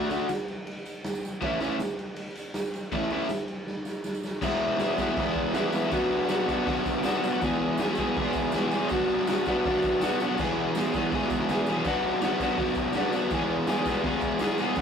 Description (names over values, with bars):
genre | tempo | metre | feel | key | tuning
garage rock duo or trio | 160 BPM | 4/4 | straight | unclear | A4 = 440 Hz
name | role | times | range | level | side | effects
raw garage guitar | riff | 0.0-14.8 s | E2 to G#4 | -25 LUFS | equal | overdrive
raw garage drum kit | drums | 0.1-14.8 s | crash cymbal, hi-hat, kick drum, ride cymbal, snare drum | -32 LUFS | right 1 dB | none
tambourine | percussion | 0.1-14.8 s | none | -51 LUFS | right 5 dB | none
room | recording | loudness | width
moderate studio reverb, RT60 0.6 s | rough rehearsal-room recording, warm saturation | -25 LUFS | side -7 dB against mid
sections
0.0-4.4 A section; 4.4-14.8 B section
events
drum fill 3.7-4.4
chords
0.0 D; 1.4 A; 4.4 E; 5.9 Bm; 7.4 E; 8.9 Bm; 10.4 E; 11.9 Bm; 13.3 E